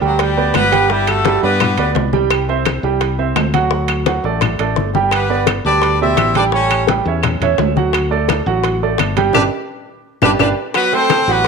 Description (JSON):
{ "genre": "latin, salsa", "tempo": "171 BPM", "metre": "4/4", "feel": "straight", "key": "G major", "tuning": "A4 = 440 Hz", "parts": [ { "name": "brilliant horn section", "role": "melody", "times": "0.0-1.9, 5.1-6.9, 9.3-11.5 s", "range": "F#3 to E5", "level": "-17 LUFS", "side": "left 2 dB", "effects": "none" }, { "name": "warm concert grand piano", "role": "accompaniment", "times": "0.0-11.5 s", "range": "B2 to G5", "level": "-17 LUFS", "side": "right 8 dB", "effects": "none" }, { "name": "fingered electric bass", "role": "bass", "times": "0.0-11.5 s", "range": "G1 to G2", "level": "-20 LUFS", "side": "left 2 dB", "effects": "none" }, { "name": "congas", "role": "percussion", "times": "0.0-11.5 s", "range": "none", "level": "-22 LUFS", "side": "left 11 dB", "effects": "none" }, { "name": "bongos", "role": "percussion", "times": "0.2-11.5 s", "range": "none", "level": "-24 LUFS", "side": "left 13 dB", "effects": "none" }, { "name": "timbales", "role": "percussion", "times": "0.2-11.3 s", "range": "none", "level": "-24 LUFS", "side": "right 10 dB", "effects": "none" }, { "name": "claves", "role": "percussion", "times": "0.6-11.3 s", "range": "none", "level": "-23 LUFS", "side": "left 14 dB", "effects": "none" } ], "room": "moderate echo chamber reverb, RT60 1.2 s, small room reverb", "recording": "1960s-style stereo with parts hard left and right", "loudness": "-13 LUFS", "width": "side -5 dB against mid", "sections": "0.0-10.7 A section", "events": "drum fill 9.3-10.7; band accent 9.3-10.7", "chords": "0.0 G; 0.9 Em7/G (rootless); 2.3 C; 3.7 D; 5.1 G6; 6.5 A7; 7.9 D; 9.3 G; 10.7 Am13", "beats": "0.20 0.55 | 0.90 1.25 1.60 1.96 | 2.31 2.66 3.01 3.36 | 3.71 4.07 4.42 4.77 | 5.12 5.47 5.82 6.17 | 6.53 6.88 7.23 7.58 | 7.93 8.29 8.64 8.99 | 9.34 9.69 10.04 10.39 | 10.75 11.10 11.45" }